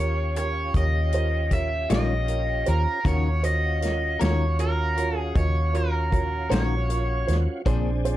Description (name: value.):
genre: slow blues.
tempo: 52 BPM (dotted quarters).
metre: 12/8.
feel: straight.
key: unclear.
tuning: A4 = 440 Hz.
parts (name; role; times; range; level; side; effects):
raw garage guitar; melody; 0.0-7.3 s; Bb4 to E5; -28 LUFS; right 1 dB; overdrive.
warm upright piano; accompaniment; 0.0-8.2 s; D4 to Eb5; -32 LUFS; right 5 dB; none.
tonewheel organ; sustained chords; 0.0-8.2 s; C4 to Ab4; -34 LUFS; equal; slow rotary speaker, chorus vibrato.
vintage muted fingered electric bass; bass; 0.0-8.2 s; Bb1 to Eb2; -24 LUFS; equal; none.
natural country drum kit; drums; 0.4-8.2 s; hi-hat, kick drum, snare drum; -28 LUFS; equal; none.
electric guitar at the edge of break-up; accompaniment; 1.9-7.9 s; Eb3 to C5; -30 LUFS; left 6 dB; harmonic tremolo.
room: little or no reverb.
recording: dark, warm production.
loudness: -22 LUFS.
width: side -14 dB against mid.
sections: 0.0-8.2 A section.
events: none.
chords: 0.0 Eb9; 3.0 Ebm7; 7.7 Bb9.